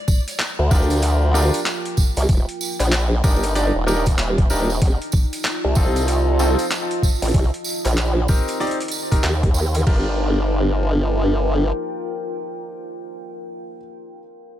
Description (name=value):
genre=glitch hop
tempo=95 BPM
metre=4/4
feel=swing 62% on 16ths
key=G minor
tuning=A4 = 441 Hz
part: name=deep dark ambient pad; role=texture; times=0.5-13.2 s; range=Eb4 to Bb5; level=-28 LUFS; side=right 1 dB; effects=chorus, built-in reverb, sidechain pumping
part: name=boom bap sampler-style drum kit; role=drums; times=0.1-10.1 s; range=crash cymbal, kick drum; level=-18 LUFS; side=equal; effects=overdrive
part: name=tambourine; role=percussion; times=0.1-9.8 s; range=none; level=-30 LUFS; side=right 6 dB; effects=none
part: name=boom bap sampler-style drum kit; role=drums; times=0.3-9.8 s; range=handclaps, hi-hat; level=-26 LUFS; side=equal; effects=overdrive
part: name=formant-sweep wobble bass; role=bass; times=0.6-11.7 s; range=Eb1 to Eb2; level=-18 LUFS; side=equal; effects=chorus
part: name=bright grand piano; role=stabs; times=0.7-13.8 s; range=C4 to D5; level=-26 LUFS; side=left 1 dB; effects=sidechain pumping, digital delay
room=digital ambience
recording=none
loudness=-17 LUFS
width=side -12 dB against mid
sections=0.0-9.9 A section; 9.9-12.4 B section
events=none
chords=0.0 Gm7; 2.3 Ebmaj7; 4.8 F7; 7.3 Cm7; 9.9 Gm7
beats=0.39 1.02 1.66 | 2.29 2.92 3.55 4.18 | 4.81 5.45 6.08 6.71 | 7.34 7.97 8.60 9.23 | 9.87 10.50 11.13 11.76